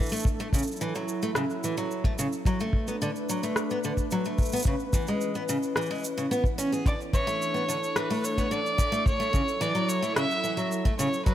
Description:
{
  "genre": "folktronica",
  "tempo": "109 BPM",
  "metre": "4/4",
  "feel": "straight",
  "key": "unclear",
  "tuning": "A4 = 440 Hz",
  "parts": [
    { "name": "warbly tape-like pad", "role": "sustained chords", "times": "0.0-11.3 s", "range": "E3 to B4", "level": "-34 LUFS", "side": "equal", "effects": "chorus, built-in reverb" },
    { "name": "picked steel-string acoustic guitar", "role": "arpeggios", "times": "0.0-11.3 s", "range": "C#3 to G#4", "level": "-30 LUFS", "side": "equal", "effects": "digital delay" },
    { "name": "electronic shaker and rim click", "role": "drums", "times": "0.0-11.3 s", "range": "none", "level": "-34 LUFS", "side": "right 1 dB", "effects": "none" },
    { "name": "kick drum", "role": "drums", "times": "0.2-11.3 s", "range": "none", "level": "-25 LUFS", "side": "equal", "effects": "none" },
    { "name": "clear violin", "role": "melody", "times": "6.9-11.3 s", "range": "B4 to E5", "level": "-28 LUFS", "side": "equal", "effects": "none" }
  ],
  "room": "light reverb, small room ambience",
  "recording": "none",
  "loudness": "-25 LUFS",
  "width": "side -12 dB against mid",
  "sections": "0.0-11.3 A section",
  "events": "none",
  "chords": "0.3 F#m7; 2.5 Bm7; 4.7 C#m7; 6.9 E7sus4; 9.1 F#m7"
}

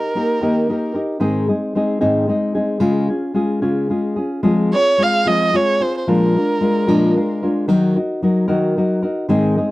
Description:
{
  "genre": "mexican folk, mariachi",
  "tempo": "74 BPM (dotted quarters)",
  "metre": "6/8",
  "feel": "rubato",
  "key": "unclear",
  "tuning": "A4 = 440 Hz",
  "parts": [
    { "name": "dark violin", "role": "melody", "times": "0.0-0.9, 4.7-7.4 s", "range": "Bb4 to F5", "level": "-18 LUFS", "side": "right 2 dB", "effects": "none" },
    { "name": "nylon-string guitar", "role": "accompaniment", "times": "0.0-9.7 s", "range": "Ab2 to Bb4", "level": "-16 LUFS", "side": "left 1 dB", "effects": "none" }
  ],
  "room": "light reverb",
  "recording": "dry, close 1970s-style studio recording",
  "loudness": "-15 LUFS",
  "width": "side -18 dB against mid",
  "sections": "0.0-9.7 A section",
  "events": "none",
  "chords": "0.0 Eb; 1.2 Ab; 2.8 Db; 4.4 Fm; 6.1 Bb7; 7.7 Ebm"
}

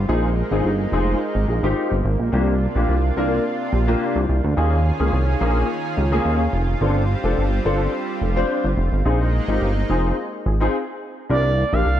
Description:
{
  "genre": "funk",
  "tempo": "107 BPM",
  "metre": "4/4",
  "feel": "straight",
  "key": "C minor",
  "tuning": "A4 = 438 Hz",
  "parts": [
    { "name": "lush unison pad", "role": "sustained chords", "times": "0.0-12.0 s", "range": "C3 to Ab4", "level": "-27 LUFS", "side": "right 2 dB", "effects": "chorus" },
    { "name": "chorused synth bass", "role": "bass", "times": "0.0-12.0 s", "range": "F1 to Eb2", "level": "-20 LUFS", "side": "equal", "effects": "none" },
    { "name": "dark concert grand piano", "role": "accompaniment", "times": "0.1-11.8 s", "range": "Bb3 to C5", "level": "-23 LUFS", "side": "left 2 dB", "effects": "ensemble chorus" },
    { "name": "expressive portamento lead", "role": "melody", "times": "11.3-12.0 s", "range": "D5 to F5", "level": "-21 LUFS", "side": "right 3 dB", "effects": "chorus" }
  ],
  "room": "light reverb",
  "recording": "none",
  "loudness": "-18 LUFS",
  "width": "side -11 dB against mid",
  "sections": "0.0-11.3 A section",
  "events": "stop 10.7-11.3",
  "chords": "0.1 Bb9sus4; 2.3 C9sus4; 4.6 Eb9sus4; 6.8 G9sus4; 9.1 Bb9sus4; 11.3 C9sus4"
}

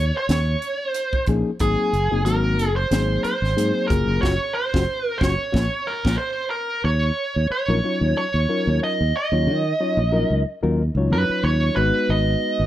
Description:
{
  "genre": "electric jazz fusion",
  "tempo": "92 BPM",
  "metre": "4/4",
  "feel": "swing 56% on 16ths",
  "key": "Bb minor, Eb minor from 6.8 s",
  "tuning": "A4 = 440 Hz",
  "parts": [
    { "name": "nasal lead guitar with a parked wah", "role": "melody", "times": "0.0-12.7 s", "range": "Ab4 to Eb5", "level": "-23 LUFS", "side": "right 2 dB", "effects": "overdrive, slapback echo" },
    { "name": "fingered electric bass", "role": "bass", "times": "0.0-12.7 s", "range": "Gb1 to Eb3", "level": "-21 LUFS", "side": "equal", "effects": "none" },
    { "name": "crisp fusion drum kit", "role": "drums", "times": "0.3-6.2 s", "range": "hi-hat, kick drum, snare drum", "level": "-25 LUFS", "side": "equal", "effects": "none" },
    { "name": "reed electric piano", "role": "accompaniment", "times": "1.3-12.7 s", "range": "F3 to Db5", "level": "-24 LUFS", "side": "left 4 dB", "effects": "none" }
  ],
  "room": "small room ambience",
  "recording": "none",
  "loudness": "-19 LUFS",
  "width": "side -13 dB against mid",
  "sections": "0.0-6.8 A section; 6.8-12.7 B section",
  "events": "band accent 4.2-6.8",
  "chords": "0.0 Eb9sus4; 1.6 Ab7; 3.9 Gbmaj9; 5.5 Bbm; 6.8 Ebm7; 11.8 Abm7"
}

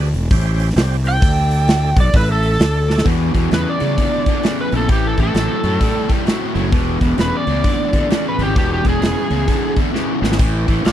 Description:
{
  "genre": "blues rock power trio and southern rock",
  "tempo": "131 BPM",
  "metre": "4/4",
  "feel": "swing 62% on 8ths",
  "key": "unclear",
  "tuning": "A4 = 440 Hz",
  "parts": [
    { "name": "overdriven tonewheel organ", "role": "sustained chords", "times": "0.0-10.9 s", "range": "G3 to G5", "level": "-28 LUFS", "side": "right 4 dB", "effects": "slow rotary speaker" },
    { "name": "fuzz fingered electric bass", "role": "bass", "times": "0.0-10.9 s", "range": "E1 to C#3", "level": "-19 LUFS", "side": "equal", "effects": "overdrive" },
    { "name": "big rock drum kit", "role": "drums", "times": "0.1-10.9 s", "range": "hi-hat, kick drum, snare drum, splash cymbal", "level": "-18 LUFS", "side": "equal", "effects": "none" },
    { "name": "overdriven slide guitar", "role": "melody", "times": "1.1-10.9 s", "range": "G4 to G5", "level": "-21 LUFS", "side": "right 1 dB", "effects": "slapback echo" },
    { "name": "distorted electric guitar", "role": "riff", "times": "3.0-10.9 s", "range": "E2 to G3", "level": "-20 LUFS", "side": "left 1 dB", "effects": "distortion" }
  ],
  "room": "little or no reverb",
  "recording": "dry, close 1970s-style studio recording",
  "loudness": "-14 LUFS",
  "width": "side -11 dB against mid",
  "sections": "0.0-3.1 A section; 3.1-10.9 B section",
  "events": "electric slide guitar solo 0.0-3.1; drum fill 2.8, 9.9-10.4",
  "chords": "0.3 A7#9; 0.8 C5; 1.2 D5; 1.9 B7#9; 2.1 A5; 2.6 D5; 3.1 E7#9; 4.9 A7#9; 6.7 E7#9; 10.4 A7#9"
}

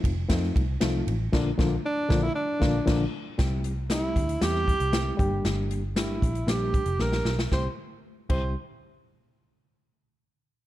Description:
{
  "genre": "uptempo 1960s-style soul",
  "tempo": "116 BPM",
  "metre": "4/4",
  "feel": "straight",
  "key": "C mixolydian",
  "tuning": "A4 = 441 Hz",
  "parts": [
    { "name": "barky reed electric piano", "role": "accompaniment", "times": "0.0-8.5 s", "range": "D3 to G4", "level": "-30 LUFS", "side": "left 3 dB", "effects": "harmonic tremolo" },
    { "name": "vintage muted picked electric bass", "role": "bass", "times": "0.0-8.5 s", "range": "F1 to F2", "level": "-28 LUFS", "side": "equal", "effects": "none" },
    { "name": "swinging big-band drum kit", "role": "drums", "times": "0.0-8.4 s", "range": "crash cymbal, hi-hat, kick drum, ride cymbal, snare drum", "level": "-28 LUFS", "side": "equal", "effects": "none" },
    { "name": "breathy tenor saxophone", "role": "melody", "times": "1.9-8.5 s", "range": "D4 to C5", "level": "-29 LUFS", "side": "right 2 dB", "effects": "none" }
  ],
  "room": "studio ambience",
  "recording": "dark, warm production",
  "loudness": "-24 LUFS",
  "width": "side -14 dB against mid",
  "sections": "0.0-3.4 A section; 3.4-7.5 B section; 7.5-9.6 C section",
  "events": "band accent 1.3-3.4; drum fill 7.0-7.5",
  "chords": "0.0 F7; 1.3 Bb; 3.4 C; 5.2 Gm; 7.5 C"
}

